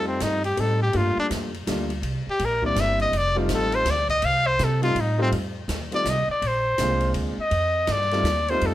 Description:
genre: jazz, small-group swing and bop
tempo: 164 BPM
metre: 3/4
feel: swing 63% on 8ths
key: F mixolydian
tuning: A4 = 440 Hz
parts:
  - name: clear trumpet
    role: melody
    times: 0.0-8.7 s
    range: C4 to F5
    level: -23 LUFS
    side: left 1 dB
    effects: none
  - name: warm baby grand piano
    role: accompaniment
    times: 0.0-8.7 s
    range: G3 to G4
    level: -28 LUFS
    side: left 1 dB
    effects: none
  - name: upright bass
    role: bass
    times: 0.0-8.7 s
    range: F1 to C3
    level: -26 LUFS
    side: equal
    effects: none
  - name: open jazz drum kit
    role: drums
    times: 0.2-8.7 s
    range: hi-hat, kick drum, ride cymbal, snare drum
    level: -33 LUFS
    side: equal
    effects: none
room: light reverb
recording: none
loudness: -21 LUFS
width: side -14 dB against mid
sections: 0.0-5.3 A section; 5.3-8.7 A section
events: trumpet solo 0.0-8.7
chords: 0.0 F9; 0.9 Gm7; 2.0 C9; 3.1 F9; 5.3 F7(no3); 6.4 Bb9; 7.5 F9

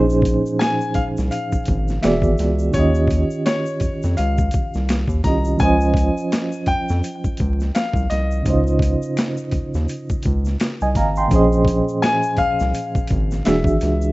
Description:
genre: R&B, neo-soul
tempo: 84 BPM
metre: 4/4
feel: swing 59% on 16ths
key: unclear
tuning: A4 = 440 Hz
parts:
  - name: reed electric piano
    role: accompaniment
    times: 0.0-14.1 s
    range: Bb2 to C6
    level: -21 LUFS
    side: right 2 dB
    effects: fast tremolo
  - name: round analog bass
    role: bass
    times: 0.0-14.1 s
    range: E1 to F2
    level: -20 LUFS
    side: equal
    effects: none
  - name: egg shaker and finger snaps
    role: percussion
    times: 0.1-14.1 s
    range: none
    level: -40 LUFS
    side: left 4 dB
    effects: none
  - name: boom bap sampler-style drum kit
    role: drums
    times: 0.2-14.0 s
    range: hi-hat, kick drum, snare drum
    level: -22 LUFS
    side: equal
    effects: overdrive
  - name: clear concert grand piano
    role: melody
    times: 0.6-14.1 s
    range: Db5 to Bb5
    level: -24 LUFS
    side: left 2 dB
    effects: none
room: small room ambience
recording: rough home demo mix, vinyl crackle, nothing above 7.9 kHz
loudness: -17 LUFS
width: side -20 dB against mid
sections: 0.0-14.1 A section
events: none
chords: 0.0 Bbm11; 2.0 E9; 2.7 Eb9; 5.6 Dbmaj7; 13.4 E9

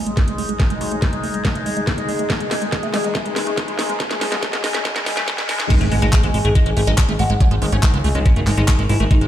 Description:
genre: psychedelic trance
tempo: 141 BPM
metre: 4/4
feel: straight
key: unclear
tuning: A4 = 440 Hz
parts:
  - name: overtone-sweeping drone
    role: sustained chords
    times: 0.0-5.7 s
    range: G#3 to D#4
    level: -29 LUFS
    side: equal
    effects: chorus, built-in reverb, phaser, sidechain pumping
  - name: riser and impact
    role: sound effects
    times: 0.4-7.4 s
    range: none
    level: -29 LUFS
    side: equal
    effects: none
  - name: warbly tape-like pad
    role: texture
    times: 0.0-9.3 s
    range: G#4 to G#5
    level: -27 LUFS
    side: left 3 dB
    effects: chorus, built-in reverb, sidechain pumping
  - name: liquid acid bass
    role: riff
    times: 0.1-9.3 s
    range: G#3 to D#4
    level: -26 LUFS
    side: right 1 dB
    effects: phaser, auto-pan, sidechain pumping, dub echo
  - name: garage drum kit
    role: drums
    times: 0.1-9.3 s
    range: crash cymbal, handclaps, hi-hat, snare drum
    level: -24 LUFS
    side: equal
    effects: studio reverb
  - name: electronic kick drum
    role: drums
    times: 0.2-9.2 s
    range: none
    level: -17 LUFS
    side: equal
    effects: studio reverb
  - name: resonant blip pluck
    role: second line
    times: 0.6-1.0, 5.9-7.8 s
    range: F#3 to B3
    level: -37 LUFS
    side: right 2 dB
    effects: none
  - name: oud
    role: melody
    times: 5.7-9.3 s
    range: D#3 to F#4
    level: -24 LUFS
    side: equal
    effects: phaser, sidechain pumping, dub echo
  - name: fat analog bass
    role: bass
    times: 5.8-9.3 s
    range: F#1 to C#2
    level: -18 LUFS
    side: equal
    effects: tube saturation
room: light reverb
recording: played on a big sound system in a bare room, large studio reverb, high-pass filter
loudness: -16 LUFS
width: side -11 dB against mid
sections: 0.0-5.7 A section; 5.7-9.3 B section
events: build-up 0.0-5.7; drum fill 0.0-5.7; filter sweep on acid bass 0.0-5.7; filter sweep 0.0-5.7; riser 0.4-5.7; drop 5.7-9.3; impact 5.7-7.4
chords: 0.0 G#5

